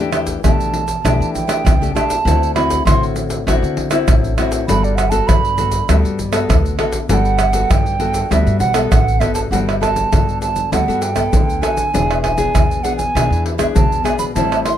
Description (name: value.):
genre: samba and choro.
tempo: 99 BPM.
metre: 4/4.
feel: straight.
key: G major.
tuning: A4 = 441 Hz.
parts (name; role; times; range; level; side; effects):
nylon-string guitar; accompaniment; 0.0-14.8 s; A2 to A4; -20 LUFS; left 5 dB; none.
upright bass; bass; 0.0-14.8 s; E1 to E3; -20 LUFS; equal; none.
tube shaker, pandeiro, tamborim and surdo; percussion; 0.1-14.8 s; none; -17 LUFS; equal; none.
hollow wooden flute; melody; 0.4-14.8 s; D5 to C6; -20 LUFS; right 5 dB; none.
room: little or no reverb.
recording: close, detailed microphones.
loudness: -14 LUFS.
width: side -10 dB against mid.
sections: 0.0-9.5 A section; 9.5-14.8 B section.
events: flute solo 0.0-9.5.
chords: 0.0 Em7; 2.3 D9; 4.7 Gmaj9; 11.9 E7.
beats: 0.45 1.05 1.66 | 2.26 2.87 3.47 4.08 | 4.68 5.29 5.89 6.50 | 7.10 7.71 8.31 8.92 | 9.52 10.13 10.73 11.34 | 11.94 12.55 13.15 13.76 | 14.36.